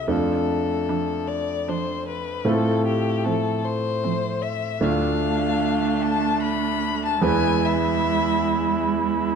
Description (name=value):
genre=classical, slow romantic movement for piano quartet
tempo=75 BPM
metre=3/4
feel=rubato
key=unclear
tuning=A4 = 439 Hz
part: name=rich violin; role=melody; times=0.0-8.8 s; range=G4 to B5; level=-27 LUFS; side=left 8 dB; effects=none
part: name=bright grand piano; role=accompaniment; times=0.0-9.4 s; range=D2 to B4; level=-24 LUFS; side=right 1 dB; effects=none
part: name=warm cello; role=second line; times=0.9-9.4 s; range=F3 to A3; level=-27 LUFS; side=right 7 dB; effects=none
part: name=warm viola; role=accompaniment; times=0.9-9.4 s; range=C4 to E4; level=-26 LUFS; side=right 3 dB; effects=none
room=wet recital hall reverb, RT60 1.8 s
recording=dark, warm production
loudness=-20 LUFS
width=side -6 dB against mid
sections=0.0-9.4 A section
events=none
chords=0.1 F6; 2.5 F/A; 4.8 Dm; 7.2 E